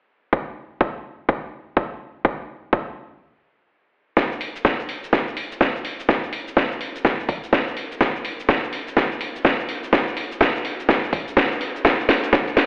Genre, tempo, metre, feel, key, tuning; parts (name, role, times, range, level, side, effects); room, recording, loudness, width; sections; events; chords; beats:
house; 125 BPM; 4/4; swing 62% on 16ths
electronic kick drum; drums; 0.3-12.4 s; -20 LUFS; equal
house drum kit; drums; 4.2-12.7 s; hi-hat, shaker, snare drum; -20 LUFS; equal
moderate lush hall reverb, RT60 2.0 s; played on a big sound system in a bare room, large studio reverb, telephone sound; -19 LUFS; side -28 dB against mid
0.3-4.2 A section; 4.2-12.7 B section
break 3.2-4.2; build-up 4.2-12.7; drum fill 4.2-12.7
| 0.33 0.81 1.29 1.77 | 2.25 2.73 3.21 3.69 | 4.17 4.65 5.13 5.61 | 6.09 6.57 7.05 7.53 | 8.01 8.49 8.97 9.45 | 9.93 10.41 10.89 11.37 | 11.85 12.33